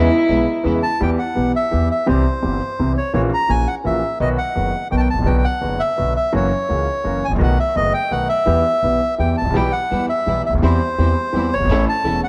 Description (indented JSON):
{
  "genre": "tango",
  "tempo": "169 BPM",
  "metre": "3/4",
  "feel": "rubato",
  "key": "E harmonic minor",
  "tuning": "A4 = 440 Hz",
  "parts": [
    { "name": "warm cello", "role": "second line", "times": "0.0-0.6 s", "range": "E4", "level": "-22 LUFS", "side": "equal", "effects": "none" },
    { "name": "clear concert grand piano", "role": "accompaniment", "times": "0.0-12.2 s", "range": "E1 to A4", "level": "-23 LUFS", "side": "equal", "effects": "none" },
    { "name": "rich symphonic string section", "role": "stabs", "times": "0.0-0.8, 9.5-12.2 s", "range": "G3 to E4", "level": "-30 LUFS", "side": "equal", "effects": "none" },
    { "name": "upright bass", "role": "bass", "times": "0.0-12.2 s", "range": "E1 to E2", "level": "-23 LUFS", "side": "equal", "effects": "none" },
    { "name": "bandoneon", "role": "melody", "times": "0.8-12.3 s", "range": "C5 to A#5", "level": "-22 LUFS", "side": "equal", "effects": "none" }
  ],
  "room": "moderate plate reverb, RT60 2.9 s",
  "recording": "heard from further back in the room",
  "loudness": "-18 LUFS",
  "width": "mono",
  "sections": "0.0-1.0 A section; 1.0-12.3 B section",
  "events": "cello solo 0.0-1.0",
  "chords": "0.0 E6; 1.0 Em; 2.1 C; 3.1 F#7/A#; 4.2 B; 5.3 Bm; 6.3 F#7; 7.4 B7; 8.5 Em; 10.6 C/E; 11.7 A",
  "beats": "0.29 0.65 | 1.01 1.37 1.73 | 2.09 2.44 2.79 | 3.14 3.50 3.85 | 4.21 4.56 4.92 | 5.28 5.64 5.99 | 6.35 6.71 7.06 | 7.41 7.77 8.12 | 8.48 8.83 9.19 | 9.55 9.91 10.27 | 10.62 10.98 11.33 | 11.69 12.04"
}